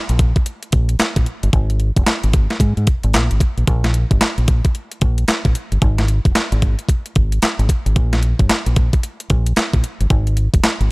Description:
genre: R&B, new jack swing.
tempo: 112 BPM.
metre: 4/4.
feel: swing 62% on 16ths.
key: unclear.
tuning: A4 = 440 Hz.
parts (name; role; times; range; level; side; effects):
deep dub fingered electric bass; bass; 0.1-10.9 s; F1 to Ab2; -17 LUFS; equal; none.
clean 12-bit digital drum machine; drums; 0.1-10.9 s; handclaps, hi-hat, kick drum, snare drum; -16 LUFS; equal; overdrive.
room: little or no reverb.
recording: none.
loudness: -14 LUFS.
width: side -26 dB against mid.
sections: 0.0-10.9 A section.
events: none.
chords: none.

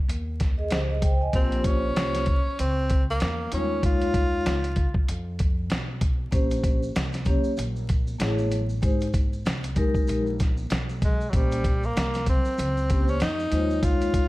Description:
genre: hip hop, jazz-hop.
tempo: 96 BPM.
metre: 4/4.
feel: swing 59% on 16ths.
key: Bb dorian.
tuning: A4 = 442 Hz.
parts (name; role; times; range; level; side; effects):
upright bass; bass; 0.1-14.3 s; Ab1 to F2; -29 LUFS; equal; none.
dusty soul sampler-style drum kit; drums; 0.1-14.3 s; hi-hat, kick drum, snare drum; -24 LUFS; equal; none.
vibraphone with soft mallets; accompaniment; 0.6-14.3 s; G3 to Ab5; -28 LUFS; left 1 dB; none.
breathy tenor saxophone; melody; 1.4-5.1, 11.0-14.3 s; Gb3 to F4; -28 LUFS; equal; none.
maracas and congas; percussion; 6.3-14.3 s; none; -41 LUFS; right 1 dB; none.
room: light reverb, small room ambience.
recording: dark, warm production, vinyl crackle.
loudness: -22 LUFS.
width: side -18 dB against mid.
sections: 0.0-14.3 A section.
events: none.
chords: 0.0 Abmaj7; 1.3 Bbm69; 3.5 Eb9sus4; 6.3 Bbm69; 8.2 Amaj7; 8.8 Abmaj7; 11.3 Bbm69; 13.5 Eb9sus4.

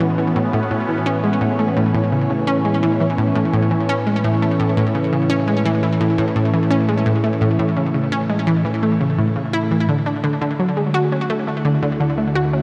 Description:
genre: ambient, sequencer-driven space music.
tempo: 85 BPM.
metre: 4/4.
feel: straight.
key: A major.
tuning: A4 = 440 Hz.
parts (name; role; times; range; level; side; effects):
sweeping resonant pad; sustained chords; 0.0-12.6 s; A2 to F#4; -22 LUFS; equal; chorus.
analog pluck; riff; 0.0-12.6 s; A2 to F#4; -21 LUFS; equal; chorus, delay.
analog drone; bass; 11.6-12.6 s; D2; -41 LUFS; equal; chorus, tube saturation.
room: wet shimmer reverb, RT60 7.2 s.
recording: dark, warm production.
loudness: -18 LUFS.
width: mono.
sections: 0.0-9.9 A section; 9.9-12.6 B section.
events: none.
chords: 0.0 Amaj7; 9.9 Dmaj7.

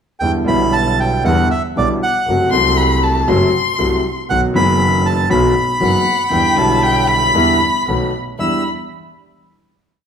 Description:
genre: tango.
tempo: 118 BPM.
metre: 4/4.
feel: rubato.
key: E minor.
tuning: A4 = 439 Hz.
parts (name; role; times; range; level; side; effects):
bandoneon; melody; 0.2-8.6 s; D5 to E6; -17 LUFS; equal; none.
clear concert grand piano; accompaniment; 0.2-8.6 s; F#1 to F#4; -17 LUFS; equal; none.
bright double bass; bass; 0.2-8.6 s; F#1 to E2; -21 LUFS; right 2 dB; none.
warm violin; second line; 2.5-8.6 s; F#5 to C6; -18 LUFS; left 3 dB; none.
room: wet large studio reverb, RT60 1.4 s.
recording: band playing live in one room.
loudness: -13 LUFS.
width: side -7 dB against mid.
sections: 0.2-8.4 A section; 8.4-10.1 final chord.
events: none.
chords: 0.2 Em7; 2.3 F#dim; 4.3 B; 6.3 Em7; 7.9 B7; 8.4 Em7.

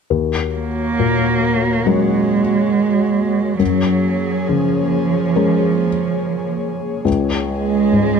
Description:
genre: neoclassical piano and strings.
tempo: 69 BPM.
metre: 4/4.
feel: rubato.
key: unclear.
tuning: A4 = 441 Hz.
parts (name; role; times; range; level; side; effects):
felt-muted upright piano; accompaniment; 0.1-8.2 s; C#2 to A#4; -19 LUFS; left 6 dB; none.
airy breathy pad; sustained chords; 0.1-8.2 s; G#3 to C#5; -24 LUFS; left 2 dB; chorus.
dark cello; second line; 0.5-8.2 s; E#3 to A#3; -17 LUFS; right 6 dB; none.
room: light reverb.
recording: dark, warm production.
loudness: -15 LUFS.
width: side -6 dB against mid.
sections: 0.1-8.2 A section.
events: none.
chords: 0.1 D#m7; 3.6 F#add9; 7.1 C#5.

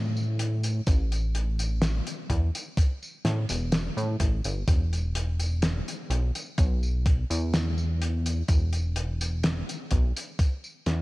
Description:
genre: vaporwave.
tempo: 63 BPM.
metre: 4/4.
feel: straight.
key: unclear.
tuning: A4 = 438 Hz.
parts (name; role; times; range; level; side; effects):
chorused synth bass; bass; 0.0-11.0 s; E1 to A2; -26 LUFS; equal; none.
cloth-damped thuddy drum kit; drums; 0.2-11.0 s; hi-hat, snare drum, tambourine; -31 LUFS; equal; none.
electronic kick drum; drums; 0.9-10.6 s; none; -23 LUFS; equal; none.
room: little or no reverb.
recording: cassette tape.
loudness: -24 LUFS.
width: side -20 dB against mid.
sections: 0.0-11.0 A section.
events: fade-out 9.8-11.0.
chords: none.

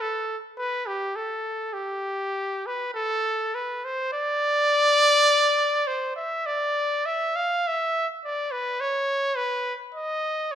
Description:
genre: classical, free, expressive piece for unaccompanied trumpet.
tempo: 49-54 BPM.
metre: 4/4.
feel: rubato.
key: unclear.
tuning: A4 = 441 Hz.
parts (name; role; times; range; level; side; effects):
clear trumpet; solo; 0.0-10.6 s; G4 to F5; -22 LUFS; equal; none.
room: moderate recital hall reverb, RT60 1.5 s.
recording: minimal, uncompressed stereo recording.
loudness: -22 LUFS.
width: side -10 dB against mid.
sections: 0.0-10.6 A section.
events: none.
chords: none.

